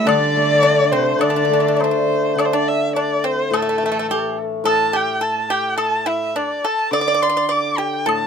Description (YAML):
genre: chinese traditional, Chinese chamber ensemble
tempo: 105 BPM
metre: 2/4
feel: rubato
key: D shang mode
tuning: A4 = 441 Hz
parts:
  - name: warm erhu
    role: melody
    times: 0.0-8.3 s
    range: A4 to D6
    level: -20 LUFS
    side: equal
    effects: none
  - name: clear cello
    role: second line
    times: 0.0-2.0 s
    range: C3 to D3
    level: -23 LUFS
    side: right 4 dB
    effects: none
  - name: pipa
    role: second line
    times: 0.0-8.3 s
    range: A3 to D5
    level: -23 LUFS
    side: right 2 dB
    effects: none
  - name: hammered dulcimer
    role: accompaniment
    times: 0.0-8.3 s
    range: A2 to D4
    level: -21 LUFS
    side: left 1 dB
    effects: none
  - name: bright large dizi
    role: second line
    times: 0.1-2.1 s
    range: C5 to D5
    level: -21 LUFS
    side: left 6 dB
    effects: none
  - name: woodblock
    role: percussion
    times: 0.1-8.2 s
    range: none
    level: -25 LUFS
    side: left 4 dB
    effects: none
room: little or no reverb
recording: close, detailed microphones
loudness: -16 LUFS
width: side -7 dB against mid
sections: 0.0-2.4 A section; 2.4-8.3 B section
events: none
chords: none